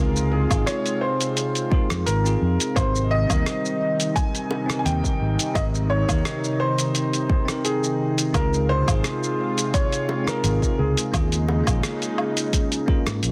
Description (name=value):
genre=sunset chillout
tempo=86 BPM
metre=4/4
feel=swing 53% on 16ths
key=Ab major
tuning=A4 = 443 Hz
part: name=warm grand piano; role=melody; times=0.0-13.2 s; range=Ab4 to Ab5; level=-30 LUFS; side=equal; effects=digital delay
part: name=bell-like tine electric piano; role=accompaniment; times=0.0-13.3 s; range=C3 to G5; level=-30 LUFS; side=equal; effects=tape echo
part: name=lush unison pad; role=sustained chords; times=0.0-13.3 s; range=C3 to F4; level=-32 LUFS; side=equal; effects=chorus
part: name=fingered electric bass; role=bass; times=0.0-13.3 s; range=Ab1 to Ab2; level=-25 LUFS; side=equal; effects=none
part: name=dusty soul sampler-style drum kit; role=drums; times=0.2-13.3 s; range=hi-hat, rim click, shaker, woodblock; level=-30 LUFS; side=equal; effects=soft clipping on snare
part: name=electronic kick drum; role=drums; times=0.5-13.0 s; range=none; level=-25 LUFS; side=equal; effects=overdrive
part: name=bongos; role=percussion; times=4.5-4.7, 10.1-13.2 s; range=none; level=-32 LUFS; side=equal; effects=none
room=light reverb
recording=dense, heavily limited modern master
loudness=-22 LUFS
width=mono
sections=0.0-13.3 A section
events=none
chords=0.0 Dbmaj7; 2.8 Abmaj7; 8.3 Dbmaj7; 11.1 Eb7sus4